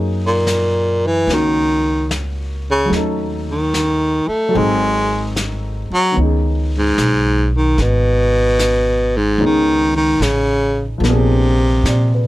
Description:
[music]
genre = jazz ballad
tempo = 74 BPM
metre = 4/4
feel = swing 66% on 8ths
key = unclear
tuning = A4 = 440 Hz
[part]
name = dark baby grand piano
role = accompaniment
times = 0.0-12.3 s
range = D#3 to D5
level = -23 LUFS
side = left 1 dB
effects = none
[part]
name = upright bass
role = bass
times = 0.0-12.3 s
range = G#1 to A#2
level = -19 LUFS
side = equal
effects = none
[part]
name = breathy baritone saxophone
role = melody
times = 0.3-12.3 s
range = G#2 to A3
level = -16 LUFS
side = equal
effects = none
[part]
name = vintage brush drum kit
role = drums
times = 0.5-12.3 s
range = brushed snare drum, hi-hat, snare drum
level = -27 LUFS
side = left 2 dB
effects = none
[sound]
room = little or no reverb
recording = close, detailed microphones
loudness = -14 LUFS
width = side -17 dB against mid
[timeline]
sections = 0.0-12.3 A section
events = none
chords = 0.0 F#69; 2.9 D#m7b5; 4.5 G#7b9; 6.2 C#sus2; 11.0 A#7b9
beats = 0.47 1.29 2.10 | 2.92 3.73 4.54 5.35 | 6.16 6.97 7.78 8.59 | 9.40 10.21 11.03 11.85

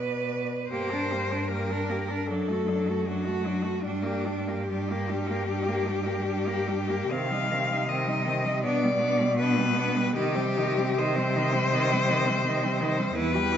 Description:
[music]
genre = classical, lyrical piece for cello ensemble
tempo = 66-84 BPM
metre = 4/4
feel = rubato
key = G minor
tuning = A4 = 439 Hz
[part]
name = clear cello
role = melody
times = 0.0-13.6 s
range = D4 to F5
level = -29 LUFS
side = left 4 dB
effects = none
[part]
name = rich cello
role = second line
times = 0.0-13.6 s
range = B3 to B4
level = -32 LUFS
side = right 5 dB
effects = none
[part]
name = rich cello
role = bass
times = 0.0-13.6 s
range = E2 to C3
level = -30 LUFS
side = right 1 dB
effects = none
[part]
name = rich cello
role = accompaniment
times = 0.7-13.6 s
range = Eb3 to D4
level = -31 LUFS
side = left 1 dB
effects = none
[sound]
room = wet recital hall reverb, RT60 1.5 s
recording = nothing above 7.7 kHz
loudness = -24 LUFS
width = side -9 dB against mid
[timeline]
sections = 0.7-13.6 A section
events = none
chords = 0.0 Bm; 0.7 Gm; 2.3 D/F#; 3.8 Gm; 7.1 Cm; 8.6 G/B; 10.2 Cm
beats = | 0.71 1.50 2.29 3.07 | 3.83 4.70 5.49 6.27 | 7.11 7.88 8.64 9.38 | 10.15 10.96 11.71 12.45 | 13.17

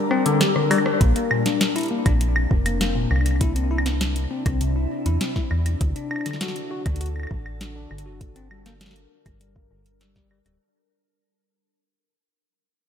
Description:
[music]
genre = IDM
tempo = 100 BPM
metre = 4/4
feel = straight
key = unclear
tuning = A4 = 441 Hz
[part]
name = warbly lo-fi synth keys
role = melody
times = 0.0-0.7 s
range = Bb5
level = -39 LUFS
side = right 3 dB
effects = none
[part]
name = glassy FM pad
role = sustained chords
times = 0.0-10.6 s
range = C3 to Bb4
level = -28 LUFS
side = left 3 dB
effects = ensemble chorus, built-in reverb
[part]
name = bell-like tine electric piano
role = arpeggios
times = 0.0-10.6 s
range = G2 to G4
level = -26 LUFS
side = left 3 dB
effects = low-pass filter, tape echo
[part]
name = flickering grainy texture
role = texture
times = 0.0-1.0 s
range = D5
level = -40 LUFS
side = right 3 dB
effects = none
[part]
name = booming analog drum machine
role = drums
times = 0.1-10.6 s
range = hi-hat, rim click, snare drum, woodblock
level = -26 LUFS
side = right 1 dB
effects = none
[part]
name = metallic FM bass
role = bass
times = 1.0-10.6 s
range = D1 to E2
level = -23 LUFS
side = equal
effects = none
[part]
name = electronic kick drum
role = drums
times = 1.0-10.3 s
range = none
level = -22 LUFS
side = equal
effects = overdrive
[sound]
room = light reverb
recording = echo-heavy mix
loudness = -20 LUFS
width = side -8 dB against mid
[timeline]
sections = 0.0-1.0 A section; 1.0-10.6 B section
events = break 0.0-1.0; drum fill 0.1-1.0; band accent 0.9-1.2; fade-out 1.0-10.6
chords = 0.0 Gm; 1.0 Bbadd9; 3.4 Cadd9; 5.8 D; 8.2 Gmadd9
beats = 0.41 | 1.01 1.61 2.21 2.81 | 3.41 4.01 4.61 5.21 | 5.81 6.41 7.01 7.61 | 8.21 8.81 9.41 10.01

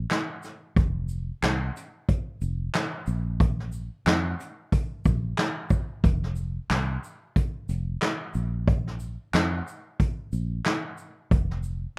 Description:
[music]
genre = hip hop, boom-bap hip-hop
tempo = 91 BPM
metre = 4/4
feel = swing 57% on 16ths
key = unclear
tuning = A4 = 440 Hz
[part]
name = fingered electric bass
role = bass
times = 0.0-11.9 s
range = F1 to F2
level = -28 LUFS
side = equal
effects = none
[part]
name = vintage brush drum kit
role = drums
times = 0.1-11.8 s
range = handclaps, hi-hat, kick drum, shaker, snare drum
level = -25 LUFS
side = equal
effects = none
[sound]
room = little or no reverb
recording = rough home demo mix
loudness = -25 LUFS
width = side -32 dB against mid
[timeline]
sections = 0.0-12.0 A section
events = none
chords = none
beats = 0.10 | 0.76 1.42 2.08 2.74 | 3.40 4.06 4.72 5.38 | 6.04 6.70 7.36 8.02 | 8.68 9.33 9.99 10.65 | 11.31

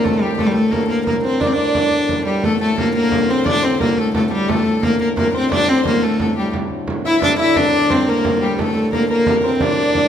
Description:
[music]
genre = medieval dance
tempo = 117 BPM (dotted quarters)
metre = 6/8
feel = straight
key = unclear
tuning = A4 = 440 Hz
[part]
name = bright viola da gamba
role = melody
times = 0.0-10.1 s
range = G3 to E4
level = -17 LUFS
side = left 1 dB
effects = none
[part]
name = concert harp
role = second line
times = 0.0-3.4, 7.1-10.1 s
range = G4 to E5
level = -23 LUFS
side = right 3 dB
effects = none
[part]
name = warm fiddle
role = second line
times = 0.0-10.1 s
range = G4 to E5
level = -24 LUFS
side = left 6 dB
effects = none
[part]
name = pedal harmonium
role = drone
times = 0.0-10.1 s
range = D2 to A2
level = -26 LUFS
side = equal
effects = none
[part]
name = frame drum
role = percussion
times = 0.1-10.1 s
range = none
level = -23 LUFS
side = right 3 dB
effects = none
[sound]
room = wet scoring stage reverb, RT60 1.4 s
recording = none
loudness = -14 LUFS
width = side -9 dB against mid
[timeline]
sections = 0.0-2.4 A section; 2.4-10.1 A section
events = none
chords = none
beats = | 0.39 0.90 | 1.42 1.93 | 2.44 2.95 | 3.46 3.98 | 4.49 5.00 | 5.51 6.03 | 6.54 7.05 | 7.56 8.07 | 8.58 9.10 | 9.61

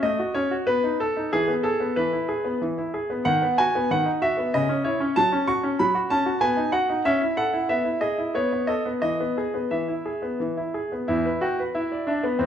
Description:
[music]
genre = classical-period piano sonatina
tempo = 93 BPM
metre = 3/4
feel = rubato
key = E major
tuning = A4 = 439 Hz
[part]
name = bright grand piano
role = solo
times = 0.0-12.5 s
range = E2 to C#6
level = -22 LUFS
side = equal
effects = none
[sound]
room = moderate recital hall reverb, RT60 1.8 s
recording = dark, warm production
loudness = -22 LUFS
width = side -9 dB against mid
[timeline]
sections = 0.0-11.1 A section; 11.1-12.5 B section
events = none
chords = 0.0 F#m/A; 0.7 B7; 1.3 E; 3.3 B/D#; 4.5 C#m; 5.2 F#5; 6.4 B; 7.1 A/C#; 7.7 E/B; 8.4 B7; 9.0 E; 11.1 Em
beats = 0.03 0.68 | 1.32 1.97 2.61 | 3.26 3.89 4.53 | 5.16 5.80 6.43 | 7.06 7.71 8.36 | 9.04 9.73 10.41 | 11.09 11.75 12.40

